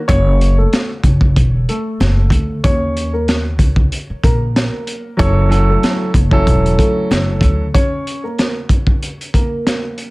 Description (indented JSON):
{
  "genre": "hip hop, boom-bap hip-hop",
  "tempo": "94 BPM",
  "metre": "4/4",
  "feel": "swing 57% on 16ths",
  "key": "unclear",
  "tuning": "A4 = 442 Hz",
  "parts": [
    { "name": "dark upright piano", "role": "melody", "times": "0.0-10.1 s", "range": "A3 to Db5", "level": "-22 LUFS", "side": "equal", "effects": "plate reverb, digital delay" },
    { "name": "upright bass", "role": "bass", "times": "0.1-7.7 s", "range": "Fb1 to Eb2", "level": "-15 LUFS", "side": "equal", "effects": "none" },
    { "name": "crunchy breakbeat drum kit", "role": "drums", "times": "0.1-10.1 s", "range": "hi-hat, kick drum, rim click, snare drum", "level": "-15 LUFS", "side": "equal", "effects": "vintage 12-bit sampler grit" },
    { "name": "dark baby grand piano", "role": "accompaniment", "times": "5.2-7.6 s", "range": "Gb3 to A4", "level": "-17 LUFS", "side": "right 1 dB", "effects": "cassette tape, plate reverb" }
  ],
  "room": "little or no reverb",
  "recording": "none",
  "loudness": "-12 LUFS",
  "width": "side -22 dB against mid",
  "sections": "0.0-7.7 A section; 7.7-10.1 A section",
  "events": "break 7.7-10.1",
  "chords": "0.1 Gbm; 2.6 Eb5; 5.2 Gbm7; 7.7 Bbm"
}